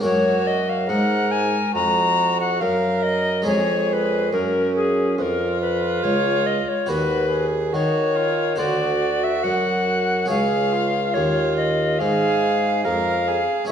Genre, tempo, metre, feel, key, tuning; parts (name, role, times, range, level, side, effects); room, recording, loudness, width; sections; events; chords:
classical, baroque-style sonata movement with continuo; 70 BPM; 4/4; straight; F# major; A4 = 440 Hz
hollow tenor recorder; melody; 0.0-13.7 s; G#4 to A#5; -22 LUFS; left 5 dB
warm violin; second line; 0.0-13.7 s; C#4 to A#4; -26 LUFS; right 7 dB
harpsichord; accompaniment; 0.0-13.7 s; C#2 to C#5; -26 LUFS; equal
mellow bassoon; bass; 0.0-13.7 s; C#2 to D#3; -24 LUFS; right 2 dB
wet recital hall reverb, RT60 1.4 s; dark, warm production; -18 LUFS; side -8 dB against mid
0.0-13.7 A section
0.0 F#; 3.5 C#/E#; 6.9 B/D#; 8.6 D7; 10.3 C#